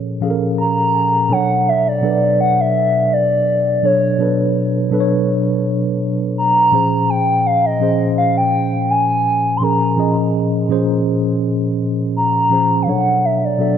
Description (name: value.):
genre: R&B.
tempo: 83 BPM.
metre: 4/4.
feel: swing 54% on 16ths.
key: unclear.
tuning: A4 = 439 Hz.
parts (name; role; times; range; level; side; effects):
mellow tine electric piano; accompaniment; 0.0-13.8 s; A#2 to A#5; -17 LUFS; equal; medium stereo tremolo.
hollow clarinet-like synth lead; melody; 0.6-13.8 s; C#5 to B#5; -16 LUFS; equal; chorus.
room: moderate lush hall reverb, RT60 3.1 s.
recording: dark, warm production.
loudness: -14 LUFS.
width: side -8 dB against mid.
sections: 0.0-1.3 A section; 1.3-13.8 B section.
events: tine electric piano fill 0.0-1.3.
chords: 0.0 A#m7; 1.3 Bm9; 6.7 A#m9; 12.9 Bm9.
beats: 0.58 | 1.30 2.03 2.75 3.47 | 4.20 4.92 5.64 6.37 | 7.09 7.81 8.53 9.26 | 9.98 10.70 11.43 12.15 | 12.87 13.59.